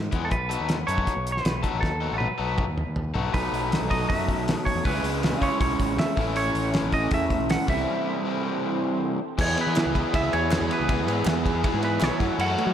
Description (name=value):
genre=indie rock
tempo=159 BPM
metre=4/4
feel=straight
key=E major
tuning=A4 = 441 Hz
part: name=growling fingered electric bass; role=bass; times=0.0-12.7 s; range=G#1 to F#3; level=-30 LUFS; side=equal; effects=overdrive
part: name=overdriven semi-hollow guitar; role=riff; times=0.1-12.7 s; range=A2 to A4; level=-29 LUFS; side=left 7 dB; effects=slapback echo
part: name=cloth-damped thuddy drum kit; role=drums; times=0.1-12.7 s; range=crash cymbal, hi-hat, kick drum, ride cymbal, snare drum, toms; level=-27 LUFS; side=equal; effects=none
part: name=semi-hollow electric guitar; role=melody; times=0.2-12.7 s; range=A4 to F#5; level=-29 LUFS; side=right 1 dB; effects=digital delay
part: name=overdriven semi-hollow guitar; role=riff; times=3.3-12.7 s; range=E3 to A4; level=-29 LUFS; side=right 7 dB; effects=analog chorus, slapback echo, digital delay
part: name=brassy analog pad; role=sustained chords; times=6.4-12.7 s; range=E4 to C#6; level=-36 LUFS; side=right 1 dB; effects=chorus
part: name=group handclap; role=percussion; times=9.8-12.1 s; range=none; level=-42 LUFS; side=right 4 dB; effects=none
room=moderate lush hall reverb, RT60 1.6 s, small room ambience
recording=big arena sound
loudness=-22 LUFS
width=side -9 dB against mid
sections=0.0-3.3 A section; 3.3-9.4 B section; 9.4-12.7 C section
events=drum fill 1.8-3.3; break 7.9-9.4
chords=0.3 B7; 3.3 B7sus4; 4.9 C#m7; 6.2 Amaj7; 7.7 C6; 9.4 E; 12.2 F#m7